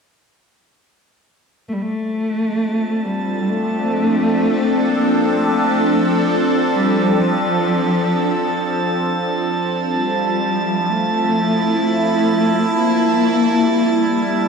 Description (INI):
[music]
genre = ambient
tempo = 65 BPM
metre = 4/4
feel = straight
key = D minor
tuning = A4 = 441 Hz
[part]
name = evolving wavetable pad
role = sustained chords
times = 2.9-14.5 s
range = F3 to Bb4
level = -18 LUFS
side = right 1 dB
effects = phaser, built-in reverb
[part]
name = dark cello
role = melody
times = 1.7-14.5 s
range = F3 to Bb3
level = -19 LUFS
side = left 2 dB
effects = diffuse ambient delay
[part]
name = drifting glass-harmonics texture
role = texture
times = 2.0-14.5 s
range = A5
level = -24 LUFS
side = right 4 dB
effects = chorus, built-in reverb
[sound]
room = wet concert hall reverb, RT60 2.1 s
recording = none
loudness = -15 LUFS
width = side -5 dB against mid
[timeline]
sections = 1.7-14.5 A section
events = none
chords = 1.7 Dm7; 9.0 Fmaj7; 12.7 Em7b5